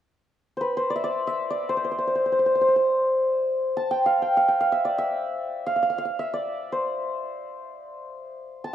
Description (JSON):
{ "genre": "persian", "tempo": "free time", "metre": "none", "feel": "none", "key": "C dastgah mahur", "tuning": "A4 = 438 Hz", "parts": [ { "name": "santur", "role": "melody", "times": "0.6-8.7 s", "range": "B4 to A5", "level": "-22 LUFS", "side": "equal", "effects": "none" } ], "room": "moderate recital hall reverb, RT60 1.6 s", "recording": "dark, warm production", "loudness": "-22 LUFS", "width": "side -10 dB against mid", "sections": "0.2-8.7 A section", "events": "none", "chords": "none" }